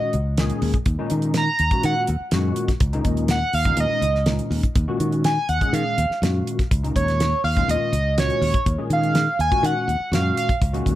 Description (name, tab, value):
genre	electric jazz fusion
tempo	123 BPM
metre	4/4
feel	straight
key	Eb minor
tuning	A4 = 439 Hz
part	overdriven synth lead	melody	0.0-10.5 s	Db5 to Bb5	-22 LUFS	right 2 dB	distortion, chorus, phaser, plate reverb, analog delay
part	overdriven tine electric piano	accompaniment	0.0-11.0 s	Bb2 to Ab4	-26 LUFS	left 2 dB	ensemble chorus, plate reverb
part	fingered electric bass	bass	0.0-11.0 s	Db2 to Eb3	-23 LUFS	equal	none
part	damped 70s drum kit	drums	0.1-11.0 s	hi-hat, kick drum, snare drum	-23 LUFS	equal	none
room	light reverb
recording	none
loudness	-18 LUFS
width	side -14 dB against mid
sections	0.0-11.0 A section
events	analog synth lead solo 0.0-11.0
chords	0.0 Ebm7